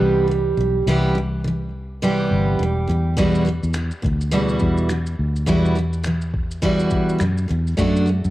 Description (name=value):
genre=acoustic pop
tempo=104 BPM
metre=4/4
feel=swing 60% on 16ths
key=unclear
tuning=A4 = 440 Hz
part: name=picked steel-string acoustic guitar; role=accompaniment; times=0.0-8.3 s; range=E2 to G4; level=-20 LUFS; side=right 1 dB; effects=cassette tape
part: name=fingered electric bass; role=bass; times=0.0-8.3 s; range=E1 to F#2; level=-22 LUFS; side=equal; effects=none
part: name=dusty soul sampler-style drum kit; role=drums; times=3.2-8.3 s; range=finger snaps, kick drum, shaker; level=-27 LUFS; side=equal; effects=none
room=light reverb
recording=home recording on cassette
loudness=-18 LUFS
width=side -15 dB against mid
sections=0.0-8.3 A section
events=none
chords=0.0 Cmaj7; 2.9 Emadd9; 7.8 D